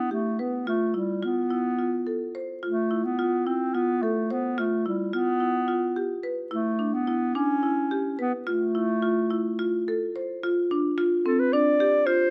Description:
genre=contemporary instrumental, contemporary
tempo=216 BPM (eighths)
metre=7/8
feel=straight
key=F lydian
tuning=A4 = 442 Hz
part: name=warm clarinet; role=melody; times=0.0-12.3 s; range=G3 to D5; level=-28 LUFS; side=equal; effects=none
part: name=marimba with hard mallets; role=arpeggios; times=0.0-12.3 s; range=C4 to C5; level=-28 LUFS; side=equal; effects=none
room=light reverb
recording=close, detailed microphones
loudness=-26 LUFS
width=mono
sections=0.0-10.4 A section; 10.4-12.3 B section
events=none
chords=0.0 A7sus2; 0.7 F; 4.6 G; 6.5 A9; 8.5 F; 10.4 Fsus2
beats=0.11 0.39 | 0.67 0.95 1.22 1.50 1.78 2.07 2.35 | 2.63 2.91 3.19 3.47 3.75 4.03 4.30 | 4.58 4.86 5.14 5.41 5.69 5.96 6.24 | 6.52 6.80 7.08 7.36 7.64 7.91 8.19 | 8.47 8.75 9.03 9.31 9.59 9.88 10.16 | 10.44 10.71 10.98 11.26 11.53 11.80 12.07

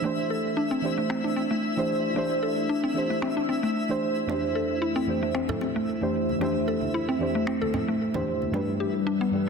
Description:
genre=organic downtempo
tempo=113 BPM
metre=4/4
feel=swing 54% on 16ths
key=unclear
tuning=A4 = 440 Hz
part: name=deep mellow chord stab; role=accompaniment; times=0.0-9.5 s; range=F2 to C5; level=-28 LUFS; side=right 2 dB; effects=chorus, digital delay
part: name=warbly tape-like pad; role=sustained chords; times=0.0-9.5 s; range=G3 to E5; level=-31 LUFS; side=left 3 dB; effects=chorus, built-in reverb
part: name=mallet-like synth pluck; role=arpeggios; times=0.0-9.5 s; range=G3 to A4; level=-29 LUFS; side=left 1 dB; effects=chorus, cassette tape, digital delay
part: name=twinkling granular texture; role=texture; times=0.0-9.5 s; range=E4 to E5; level=-34 LUFS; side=left 2 dB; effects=built-in reverb
part: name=electronic finger snaps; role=drums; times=1.1-7.6 s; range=none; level=-40 LUFS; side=left 1 dB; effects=soft clipping on snare, low-pass filter on snare
part: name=bongos and congas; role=percussion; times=4.3-8.7 s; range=none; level=-37 LUFS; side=right 3 dB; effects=none
room=wet concert hall reverb, RT60 1.9 s, digital ambience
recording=dense, heavily limited modern master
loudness=-24 LUFS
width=side -5 dB against mid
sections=0.0-9.5 A section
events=filter sweep on ambient pad 0.0-9.5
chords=0.0 D5; 4.3 Fmaj7; 8.5 Em7/G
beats=| 0.04 0.57 1.10 1.63 | 2.16 2.69 3.22 3.75 | 4.29 4.82 5.35 5.88 | 6.41 6.94 7.47 8.00 | 8.53 9.06

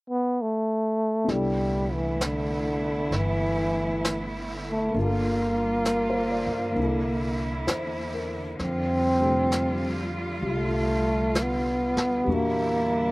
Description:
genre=jazz ballad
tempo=66 BPM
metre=4/4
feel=swing 67% on 8ths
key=C major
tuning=A4 = 440 Hz
part: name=warm trombone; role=melody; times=0.1-13.1 s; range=D3 to C4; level=-25 LUFS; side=equal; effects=none
part: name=dark baby grand piano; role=accompaniment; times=1.2-13.1 s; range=Bb2 to F5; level=-32 LUFS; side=left 2 dB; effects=none
part: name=clear chamber cello section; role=sustained chords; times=1.3-13.1 s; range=D3 to F4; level=-32 LUFS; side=right 1 dB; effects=none
part: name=upright bass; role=bass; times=1.3-13.1 s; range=G1 to G2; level=-31 LUFS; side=equal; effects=none
part: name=jazz brush drum kit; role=drums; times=1.3-13.1 s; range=brushed snare drum, hi-hat, snare drum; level=-35 LUFS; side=equal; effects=none
room=little or no reverb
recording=recorded outdoors, with no room sound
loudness=-23 LUFS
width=side -22 dB against mid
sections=0.0-1.3 A section; 1.3-13.1 B section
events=none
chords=0.0 N.C.; 1.3 Cmaj13; 5.0 Gm7; 6.8 C13; 8.6 F69; 12.3 Em7b5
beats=0.36 | 1.28 2.20 3.12 4.04 | 4.95 5.86 6.77 7.68 | 8.60 9.51 10.43 11.34 | 12.27

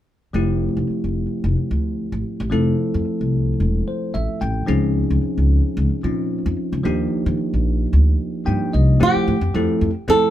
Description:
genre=electric jazz fusion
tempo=111 BPM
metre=4/4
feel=swing 54% on 16ths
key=F major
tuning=A4 = 440 Hz
part: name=bell-like tine electric piano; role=accompaniment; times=0.3-10.3 s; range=F3 to G5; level=-22 LUFS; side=equal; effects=none
part: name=upright bass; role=bass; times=0.3-10.2 s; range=E1 to Eb3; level=-19 LUFS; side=equal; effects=none
part: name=flamenco guitar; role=melody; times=9.0-10.3 s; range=G4 to A4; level=-18 LUFS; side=right 2 dB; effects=none
room=light reverb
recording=band playing live in one room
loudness=-18 LUFS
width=side -12 dB against mid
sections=0.3-9.0 A section; 9.0-10.3 B section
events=tine electric piano fill 3.6-4.7, 8.2-9.0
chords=0.3 Fmaj9; 4.7 Dbmaj9; 6.8 Ebmaj9; 9.0 Fmaj9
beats=| 0.34 0.89 1.43 1.97 | 2.51 3.06 3.60 4.14 | 4.68 5.22 5.76 6.31 | 6.85 7.39 7.93 8.47 | 9.01 9.54 10.08

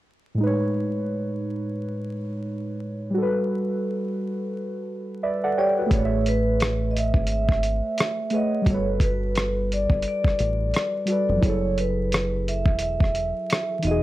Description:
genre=lo-fi hip hop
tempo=87 BPM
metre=4/4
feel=swing 59% on 16ths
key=unclear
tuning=A4 = 439 Hz
part: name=muted felt-like synth keys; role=accompaniment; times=0.3-14.0 s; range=A2 to G5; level=-26 LUFS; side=equal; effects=chorus, plate reverb
part: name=vibraphone with soft mallets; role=melody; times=5.6-14.0 s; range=B4 to E5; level=-26 LUFS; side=right 1 dB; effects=plate reverb
part: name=deep dub fingered electric bass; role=bass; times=5.9-14.0 s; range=E1 to A1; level=-26 LUFS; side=equal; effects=none
part: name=dusty soul sampler-style drum kit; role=drums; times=5.9-14.0 s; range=hi-hat, kick drum, rim click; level=-23 LUFS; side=equal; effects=overdrive
room=light reverb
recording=vinyl crackle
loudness=-22 LUFS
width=side -16 dB against mid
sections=0.4-5.9 A section; 5.9-14.0 B section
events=synth keys fill 4.9-5.9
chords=0.4 Amaj9#11; 3.2 Gmaj9; 5.9 Amaj9; 8.7 Gmaj9; 11.4 F#m9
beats=| 0.39 1.08 1.77 2.46 | 3.15 3.84 4.53 5.22 | 5.91 6.60 7.29 7.98 | 8.67 9.36 10.05 10.74 | 11.43 12.12 12.81 13.50

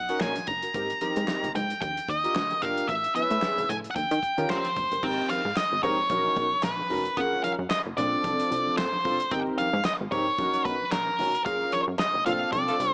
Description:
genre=early-eighties boogie funk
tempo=112 BPM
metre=4/4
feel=swing 56% on 16ths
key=unclear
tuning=A4 = 440 Hz
part: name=octave-fuzz lead guitar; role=melody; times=0.0-12.9 s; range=A#4 to A#5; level=-29 LUFS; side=equal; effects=distortion
part: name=plucky analog bass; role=bass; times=0.0-12.9 s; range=F1 to Eb3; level=-36 LUFS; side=equal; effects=none
part: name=chorused polysynth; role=accompaniment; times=0.1-12.9 s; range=B3 to B4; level=-33 LUFS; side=equal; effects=none
part: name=damped 70s drum kit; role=drums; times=0.1-12.9 s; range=crash cymbal, handclaps, hi-hat, kick drum, snare drum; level=-37 LUFS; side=equal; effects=gated reverb
part: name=congas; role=percussion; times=0.2-12.7 s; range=none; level=-45 LUFS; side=equal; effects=none
part: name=warm horn section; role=second line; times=12.7-12.8 s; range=A3 to A4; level=-34 LUFS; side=equal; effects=none
room=light reverb, studio reverb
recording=small speaker sound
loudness=-27 LUFS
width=mono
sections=0.0-5.0 A section; 5.0-12.9 B section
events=band accent 11.5-12.9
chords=0.0 Bmaj9; 0.7 Abmaj9; 1.8 Ebmaj9; 2.9 Amaj9; 4.0 Eb9; 5.0 Abmaj9; 6.1 Bmaj9; 7.2 Gbmaj9; 8.0 Bbmaj9; 9.3 Abmaj9; 10.4 Bmaj9; 11.5 Gbmaj9; 12.3 Bbmaj9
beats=0.21 | 0.74 1.28 1.81 2.35 | 2.89 3.42 3.96 4.49 | 5.03 5.57 6.10 6.64 | 7.17 7.71 8.24 8.78 | 9.31 9.85 10.39 10.92 | 11.46 11.99 12.53

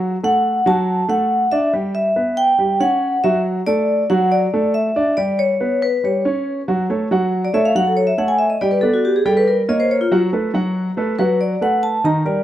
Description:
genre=jazz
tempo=140 BPM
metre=4/4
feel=straight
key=A major from 6.9 s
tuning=A4 = 440 Hz
part: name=warm baby grand piano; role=accompaniment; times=0.0-12.4 s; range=D#3 to G5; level=-19 LUFS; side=right 1 dB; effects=none
part: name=vibraphone with medium hard mallets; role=melody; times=0.2-12.4 s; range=F4 to A#5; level=-17 LUFS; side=left 1 dB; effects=none
room=studio reverb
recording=dry, close 1970s-style studio recording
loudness=-15 LUFS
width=side -12 dB against mid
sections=0.0-6.9 A section; 6.9-12.4 B section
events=vibraphone solo 6.9-12.4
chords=0.0 F#m; 1.7 Em; 2.6 Em69 (rootless); 3.5 Dadd9; 5.2 G; 6.0 F#5; 6.9 A6; 8.6 Gadd9; 9.5 D#7#9 (rootless); 10.3 F#madd11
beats=| 0.01 0.44 0.87 1.30 | 1.73 2.16 2.59 3.02 | 3.45 3.88 4.31 4.74 | 5.17 5.60 6.03 6.46 | 6.89 7.32 7.75 8.18 | 8.61 9.04 9.46 9.89 | 10.32 10.75 11.18 11.61 | 12.03

